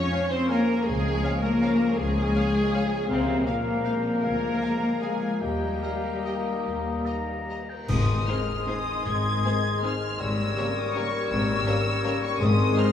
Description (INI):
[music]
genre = classical, orchestral ballroom waltz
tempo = 137-178 BPM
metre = 3/4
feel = rubato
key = Ab major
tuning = A4 = 440 Hz
[part]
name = rich studio violin section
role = melody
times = 0.0-12.9 s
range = Bb4 to Ab6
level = -35 LUFS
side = left 1 dB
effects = none
[part]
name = rich studio viola section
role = accompaniment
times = 0.0-12.8 s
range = G3 to Db5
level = -32 LUFS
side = equal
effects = none
[part]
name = dark French horn section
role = sustained chords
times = 0.0-12.9 s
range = Bb2 to Ab4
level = -32 LUFS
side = left 2 dB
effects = none
[part]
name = dark trombone section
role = sustained chords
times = 0.0-12.9 s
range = Db3 to Db4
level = -35 LUFS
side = left 2 dB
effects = none
[part]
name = concert harp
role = arpeggios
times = 0.0-12.9 s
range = F2 to Db6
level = -35 LUFS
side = left 2 dB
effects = none
[part]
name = rich studio cello section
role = bass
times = 0.0-12.7 s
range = Ab2 to Db4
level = -29 LUFS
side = left 1 dB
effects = none
[part]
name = rich studio double bass section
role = bass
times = 0.0-12.7 s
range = Ab1 to Eb2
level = -31 LUFS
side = left 1 dB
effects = none
[part]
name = clear clarinet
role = second line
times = 0.1-12.9 s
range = Ab4 to F5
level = -37 LUFS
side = left 1 dB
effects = none
[part]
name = large flute ensemble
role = second line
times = 0.1-12.9 s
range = Ab5 to Db6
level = -37 LUFS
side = left 2 dB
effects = none
[part]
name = rich studio violin section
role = second line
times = 0.1-12.8 s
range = Ab4 to Bb5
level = -41 LUFS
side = left 3 dB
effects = none
[part]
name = warm oboe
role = second line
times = 0.1-12.9 s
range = Db5 to Bb5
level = -37 LUFS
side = left 3 dB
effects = none
[part]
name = clear bassoon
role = accompaniment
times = 0.1-12.9 s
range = G3 to Db4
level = -35 LUFS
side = left 5 dB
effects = none
[part]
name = cymbal swell, clash cymbals and concert bass drum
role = percussion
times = 5.4-8.6 s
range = none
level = -37 LUFS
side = equal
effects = none
[part]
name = timpani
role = percussion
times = 7.9-8.4 s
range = Ab2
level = -32 LUFS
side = left 2 dB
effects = none
[sound]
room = wet cathedral reverb, RT60 4.8 s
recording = in a vast, echoing space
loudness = -23 LUFS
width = side -9 dB against mid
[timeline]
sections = 0.0-7.9 A section; 7.9-12.9 B section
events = band accent 7.9-8.3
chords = 0.0 Db/F; 0.9 Db; 3.1 Bbm/Db; 4.2 Bb7/D; 5.4 Eb; 7.9 Ab; 10.2 Gdim7/Ab; 12.4 Ab